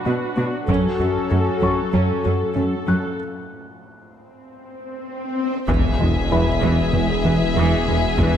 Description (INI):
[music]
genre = cinematic, hybrid orchestral and electronic film score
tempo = 96 BPM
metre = 4/4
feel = straight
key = unclear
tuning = A4 = 440 Hz
[part]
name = rich studio viola section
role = accompaniment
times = 0.0-8.4 s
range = E3 to A4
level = -28 LUFS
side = right 2 dB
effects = low-pass filter
[part]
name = chorused pulse-width pad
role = sustained chords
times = 0.0-8.4 s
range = F#3 to B4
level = -27 LUFS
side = left 2 dB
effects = low-pass filter
[part]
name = dark grand piano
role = texture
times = 0.0-8.4 s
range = B4 to F#6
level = -33 LUFS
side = left 2 dB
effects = digital delay
[part]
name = tight sequenced synth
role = arpeggios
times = 0.1-8.4 s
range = E3 to F#4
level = -27 LUFS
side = equal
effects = chorus, phaser, low-pass filter, digital delay
[part]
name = rubbery square bass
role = riff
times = 0.1-8.4 s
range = E2 to B3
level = -24 LUFS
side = left 2 dB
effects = low-pass filter
[part]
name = clear symphonic cello section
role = bass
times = 0.1-8.3 s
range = E2 to B2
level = -25 LUFS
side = right 2 dB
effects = none
[part]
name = taiko ensemble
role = drums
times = 0.7-1.9, 5.7-8.4 s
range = none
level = -26 LUFS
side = left 1 dB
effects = none
[part]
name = swell and impact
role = sound effects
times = 4.7-8.2 s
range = none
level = -28 LUFS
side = left 2 dB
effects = none
[part]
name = clear symphonic violin section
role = melody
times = 5.7-8.4 s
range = E5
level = -26 LUFS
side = left 5 dB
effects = low-pass filter
[part]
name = clear chamber violin section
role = second line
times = 5.7-8.4 s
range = G#4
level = -29 LUFS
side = left 3 dB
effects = none
[part]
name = mellow French horn section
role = sustained chords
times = 5.7-8.4 s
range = G#3 to E4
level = -32 LUFS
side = left 6 dB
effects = none
[part]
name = warm trombone section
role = sustained chords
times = 5.7-8.4 s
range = B2 to E3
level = -30 LUFS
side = right 4 dB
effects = none
[part]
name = mellow tuba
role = bass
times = 5.7-8.3 s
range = E1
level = -27 LUFS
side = right 4 dB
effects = none
[part]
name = rich symphonic double bass section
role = bass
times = 5.7-8.3 s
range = E1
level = -27 LUFS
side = right 3 dB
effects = none
[part]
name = swelling detuned saw bass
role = bass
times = 5.7-8.4 s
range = E1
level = -26 LUFS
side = equal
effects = none
[sound]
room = moderate scoring stage reverb, RT60 2.1 s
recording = none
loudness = -17 LUFS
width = side -9 dB against mid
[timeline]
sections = 0.0-5.7 A section; 5.7-8.4 B section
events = build-up 0.0-5.7; filter sweep 0.0-5.7; break 3.2-5.7; swell 4.7-5.7; impact 5.7-8.2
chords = 0.0 Bm; 0.7 F#m; 5.7 E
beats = 0.06 | 0.69 1.31 1.94 2.56 | 3.19 3.81 4.44 5.06 | 5.69 6.31 6.94 7.56 | 8.19